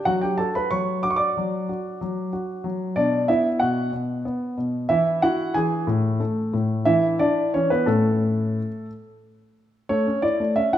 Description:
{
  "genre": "classical-period piano sonatina",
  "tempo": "61 BPM (dotted quarters)",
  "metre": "6/8",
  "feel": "straight",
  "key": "A major",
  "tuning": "A4 = 440 Hz",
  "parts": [
    { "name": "warm baby grand piano", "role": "solo", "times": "0.0-10.8 s", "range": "A2 to D6", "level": "-20 LUFS", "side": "equal", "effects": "none" }
  ],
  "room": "wet recital hall reverb, RT60 1.6 s",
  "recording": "minimal, uncompressed stereo recording",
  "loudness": "-20 LUFS",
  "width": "side -11 dB against mid",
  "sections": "0.0-9.9 A section",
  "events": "none",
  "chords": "0.1 D/F#; 2.0 N.C.; 3.0 Bm; 3.9 N.C.; 4.9 E; 5.9 N.C.; 6.9 E5; 7.9 A"
}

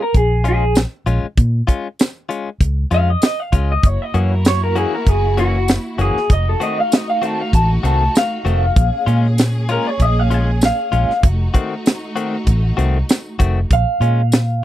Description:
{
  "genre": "straight-eighth soul blues",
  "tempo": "97 BPM",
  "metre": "4/4",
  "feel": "swing 53% on 16ths",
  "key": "Bb minor",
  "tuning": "A4 = 440 Hz",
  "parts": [
    { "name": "electric guitar through a small old amp", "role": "melody", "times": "0.0-14.6 s", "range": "Gb4 to A5", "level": "-19 LUFS", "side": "equal", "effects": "phaser" },
    { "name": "direct-recorded clean electric guitar", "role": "stabs", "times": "0.0-14.2 s", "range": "Eb3 to Gb4", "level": "-22 LUFS", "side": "left 6 dB", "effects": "none" },
    { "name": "vintage muted fingered electric bass", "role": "bass", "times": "0.1-14.6 s", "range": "F1 to Bb2", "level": "-16 LUFS", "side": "equal", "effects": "none" },
    { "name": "tight funk drum kit", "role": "drums", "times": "0.1-14.5 s", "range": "hi-hat, kick drum, snare drum, tambourine", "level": "-14 LUFS", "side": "equal", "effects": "none" },
    { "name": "warm studio string section", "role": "sustained chords", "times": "3.8-13.7 s", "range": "A3 to Ab4", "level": "-26 LUFS", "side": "right 1 dB", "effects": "none" }
  ],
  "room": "little or no reverb",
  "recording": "dry, close 1970s-style studio recording",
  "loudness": "-14 LUFS",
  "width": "side -13 dB against mid",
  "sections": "0.0-13.7 A section",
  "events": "clean electric guitar solo 0.0-13.7",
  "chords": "0.0 Bbm7; 3.8 Gb7; 6.3 F7b9; 8.8 Bbm7; 11.2 F7b9; 13.7 Bbm7"
}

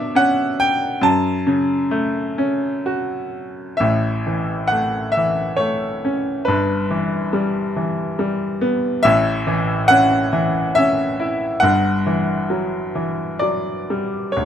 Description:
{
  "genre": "classical, lyrical solo piano",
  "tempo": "62-71 BPM",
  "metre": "3/4",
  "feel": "rubato",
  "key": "unclear",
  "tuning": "A4 = 440 Hz",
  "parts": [
    { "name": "bright baby grand piano", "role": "solo", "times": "0.0-14.4 s", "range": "G1 to A5", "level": "-17 LUFS", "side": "equal", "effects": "none" }
  ],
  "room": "light reverb",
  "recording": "none",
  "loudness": "-17 LUFS",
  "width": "side -9 dB against mid",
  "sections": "0.0-3.8 A section; 3.8-14.4 B section",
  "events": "none",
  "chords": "0.0 Bmadd9; 1.0 F#m; 3.8 A; 6.5 Em/G; 9.0 A; 11.6 Emadd9/G"
}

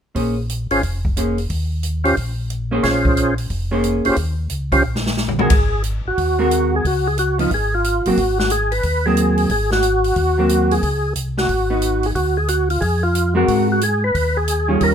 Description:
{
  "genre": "soul jazz organ trio",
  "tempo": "180 BPM",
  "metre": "4/4",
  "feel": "swing 64% on 8ths",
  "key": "Ab major",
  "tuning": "A4 = 440 Hz",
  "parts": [
    { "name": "vintage hollow-body jazz guitar", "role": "accompaniment", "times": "0.1-14.9 s", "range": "Eb3 to C5", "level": "-19 LUFS", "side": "equal", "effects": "none" },
    { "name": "mellow tonewheel organ", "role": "bass", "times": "0.2-14.9 s", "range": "F1 to Ab2", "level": "-21 LUFS", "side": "equal", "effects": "chorus vibrato, slow rotary speaker" },
    { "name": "swinging big-band drum kit", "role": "drums", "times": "0.2-14.9 s", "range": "hi-hat, kick drum, ride cymbal, snare drum, toms", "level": "-23 LUFS", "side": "equal", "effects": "none" },
    { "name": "percussive tonewheel organ", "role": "melody", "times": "0.7-14.9 s", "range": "Db4 to C5", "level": "-18 LUFS", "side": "equal", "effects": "slow rotary speaker, overdrive, chorus vibrato" }
  ],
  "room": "light reverb",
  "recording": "minimal, uncompressed stereo recording",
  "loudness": "-16 LUFS",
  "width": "side -8 dB against mid",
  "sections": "0.2-5.5 A section; 5.5-14.9 B section",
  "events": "drum fill 4.8-5.5",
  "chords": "0.2 Bbm9; 1.5 Eb5; 2.8 Bbm9; 4.2 Eb7(no3); 5.5 Ab9; 6.8 Db; 8.2 Ab9; 10.8 Dbsus2; 12.2 Ddim; 13.5 Ab9"
}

